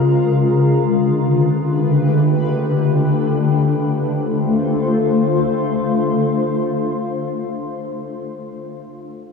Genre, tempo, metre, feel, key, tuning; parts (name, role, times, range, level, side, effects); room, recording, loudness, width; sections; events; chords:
ambient; free time; D dorian; A4 = 441 Hz
shimmering ambient pad; solo; 0.0-6.9 s; Db3 to C5; -16 LUFS; left 2 dB; chorus, built-in reverb, phaser, tape echo
wet huge ambient reverb, RT60 8.6 s; worn, warbling old tape, cassette tape, warbly pitch drift, small room ambience; -15 LUFS; side -5 dB against mid
0.0-3.3 A section; 3.3-6.5 B section
0.1 Gadd9; 3.3 Dm7